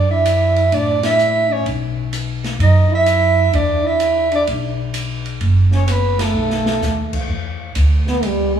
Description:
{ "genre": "jazz, small-group swing and bop", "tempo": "128 BPM", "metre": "4/4", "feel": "swing 67% on 8ths", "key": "unclear", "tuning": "A4 = 440 Hz", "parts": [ { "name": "breathy soprano saxophone", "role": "melody", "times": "0.0-7.2 s", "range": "A4 to E5", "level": "-18 LUFS", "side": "right 1 dB", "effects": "none" }, { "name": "clear trombone", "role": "second line", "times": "0.0-8.6 s", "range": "G3 to E4", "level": "-22 LUFS", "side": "right 3 dB", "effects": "none" }, { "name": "upright bass", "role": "bass", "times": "0.0-8.6 s", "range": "F#1 to A2", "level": "-17 LUFS", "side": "right 1 dB", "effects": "none" }, { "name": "open jazz drum kit", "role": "drums", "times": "0.3-8.4 s", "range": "crash cymbal, hi-hat, kick drum, ride cymbal, snare drum", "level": "-27 LUFS", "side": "equal", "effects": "none" } ], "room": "wet recital hall reverb, RT60 1.7 s", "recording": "recorded in a church or concert hall", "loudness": "-14 LUFS", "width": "side -9 dB against mid", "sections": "0.0-7.3 A section; 7.3-8.6 B section", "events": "band accent 1.0, 6.1; drum fill 6.4-6.8; trombone solo 7.3-8.6", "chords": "0.0 F#m7; 1.7 B5; 3.5 E5; 5.4 F#madd11; 6.4 B7; 7.3 E5" }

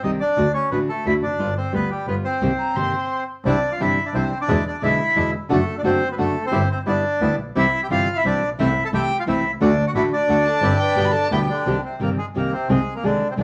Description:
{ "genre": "tango", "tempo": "175 BPM", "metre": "3/4", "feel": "rubato", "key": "C minor, C major from 3.5 s", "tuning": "A4 = 440 Hz", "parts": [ { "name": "bandoneon", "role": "melody", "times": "0.0-13.4 s", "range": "C3 to A5", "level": "-24 LUFS", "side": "equal", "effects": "none" }, { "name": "nylon-string guitar", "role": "accompaniment", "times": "0.0-13.4 s", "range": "B2 to Ab4", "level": "-26 LUFS", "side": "equal", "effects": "none" }, { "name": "clear double bass", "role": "bass", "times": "0.0-13.4 s", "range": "F1 to E2", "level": "-27 LUFS", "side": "equal", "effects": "none" }, { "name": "dark violin", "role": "second line", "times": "2.6-3.1, 10.4-11.7 s", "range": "G5 to C6", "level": "-28 LUFS", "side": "equal", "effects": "none" }, { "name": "bandoneon", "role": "stabs", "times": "3.5-11.5 s", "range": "G3 to G4", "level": "-31 LUFS", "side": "equal", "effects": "none" }, { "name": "breathy mellow concert flute", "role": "second line", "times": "10.5-11.6 s", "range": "G4 to B4", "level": "-31 LUFS", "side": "equal", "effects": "none" } ], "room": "moderate studio reverb, RT60 0.9 s", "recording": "none", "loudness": "-21 LUFS", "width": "mono", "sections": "0.0-3.5 A section; 3.5-11.7 B section; 11.7-13.4 A section", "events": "stop 3.1-3.5", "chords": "0.4 D; 1.4 G7; 2.4 Cm7; 3.5 Cadd9; 4.5 E7; 5.5 D/F#; 6.5 C/G; 6.9 G6; 7.6 C; 8.6 Am/C; 9.6 D; 10.6 C/G; 11.0 G; 11.7 Cm; 12.7 Ab/C" }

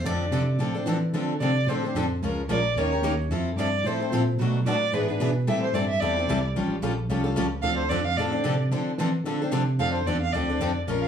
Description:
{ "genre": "acoustic string swing (jazz manouche)", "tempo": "222 BPM", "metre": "4/4", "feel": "swing 56% on 8ths", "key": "D minor", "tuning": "A4 = 442 Hz", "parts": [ { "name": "picked steel-string acoustic guitar", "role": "melody", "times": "0.0-0.8 s", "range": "D5", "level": "-34 LUFS", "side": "left 1 dB", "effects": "plate reverb, analog delay" }, { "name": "picked steel-string acoustic guitar", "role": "accompaniment", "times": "0.0-11.1 s", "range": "B2 to B4", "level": "-32 LUFS", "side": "right 5 dB", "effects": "none" }, { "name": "tine electric piano", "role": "bass", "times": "0.0-11.1 s", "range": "A1 to E3", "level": "-27 LUFS", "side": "right 1 dB", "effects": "none" }, { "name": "picked steel-string acoustic guitar", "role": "accompaniment", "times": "0.1-11.1 s", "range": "B2 to Bb4", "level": "-28 LUFS", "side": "left 4 dB", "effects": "none" }, { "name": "warm violin", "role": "second line", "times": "1.4-11.1 s", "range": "B4 to F5", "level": "-28 LUFS", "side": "right 2 dB", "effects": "none" } ], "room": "moderate studio reverb, RT60 0.5 s", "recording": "studio reverb", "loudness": "-23 LUFS", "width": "side -8 dB against mid", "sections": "0.0-1.1 A section; 1.1-9.8 A section; 9.8-11.1 A section", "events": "steel-string acoustic guitar solo 0.0-1.1; violin solo 1.1-11.1", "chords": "0.0 Dm7; 2.2 Bbm7; 2.8 Eb7; 3.3 Fmaj7; 4.4 Bm7; 4.9 E7; 5.5 Am7; 6.6 A7alt; 7.6 Dm7" }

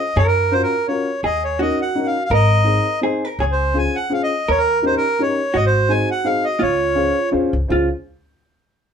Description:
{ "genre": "musette waltz", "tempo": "168 BPM", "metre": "3/4", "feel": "straight", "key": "Db major", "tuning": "A4 = 441 Hz", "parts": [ { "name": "accordion", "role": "melody", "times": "0.0-7.3 s", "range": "Bb4 to Ab5", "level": "-19 LUFS", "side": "right 1 dB", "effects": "none" }, { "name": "vintage hollow-body jazz guitar", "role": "second line", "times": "0.0-7.9 s", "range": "F4 to Bb4", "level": "-23 LUFS", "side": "right 3 dB", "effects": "none" }, { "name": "upright bass", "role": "bass", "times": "0.2-7.9 s", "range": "Ab1 to Gb2", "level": "-20 LUFS", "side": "left 1 dB", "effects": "none" }, { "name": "dark upright piano", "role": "accompaniment", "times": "0.5-7.9 s", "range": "C4 to C5", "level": "-22 LUFS", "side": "left 3 dB", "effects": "none" } ], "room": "moderate small room reverb, RT60 0.5 s", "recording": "minimal, uncompressed stereo recording", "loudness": "-16 LUFS", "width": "side -7 dB against mid", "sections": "0.0-7.7 A section; 7.7-8.8 B section", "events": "none", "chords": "0.2 Gbmaj7; 1.2 Ebm7; 2.3 Ab; 3.4 Dbmaj7; 4.5 Eb7; 5.5 Ab; 6.6 Dbmaj7" }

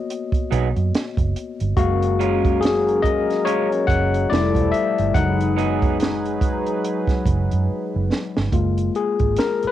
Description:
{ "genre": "R&B, neo-soul", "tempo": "71 BPM", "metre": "4/4", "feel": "swing 58% on 16ths", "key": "F# major", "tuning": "A4 = 440 Hz", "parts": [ { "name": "barky tine electric piano", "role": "accompaniment", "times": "0.0-9.7 s", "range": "F#3 to F#5", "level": "-22 LUFS", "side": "left 5 dB", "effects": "overdrive" }, { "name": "compact cocktail drum kit", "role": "drums", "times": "0.1-9.7 s", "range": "hi-hat, kick drum, snare drum", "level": "-22 LUFS", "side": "right 2 dB", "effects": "cassette tape" }, { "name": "electric guitar through a small old amp", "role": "second line", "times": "0.5-6.0 s", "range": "F#3 to A#4", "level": "-25 LUFS", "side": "right 10 dB", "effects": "none" }, { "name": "vintage muted fingered electric bass", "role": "bass", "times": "0.5-9.7 s", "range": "E1 to F#2", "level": "-22 LUFS", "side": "right 2 dB", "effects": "none" }, { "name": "warm analog pad", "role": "sustained chords", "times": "1.8-8.5 s", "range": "F3 to B4", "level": "-27 LUFS", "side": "right 2 dB", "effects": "chorus" } ], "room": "light reverb", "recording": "home recording on cassette", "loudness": "-18 LUFS", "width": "side -12 dB against mid", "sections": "0.0-8.5 A section; 8.5-9.7 B section", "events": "tine electric piano solo 0.0-8.5, 8.5-9.7; drum fill 7.7-8.5", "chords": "0.0 G#m7 (rootless); 1.8 F#maj9; 4.3 Fmaj9; 5.2 B6/F#; 8.5 F#maj9" }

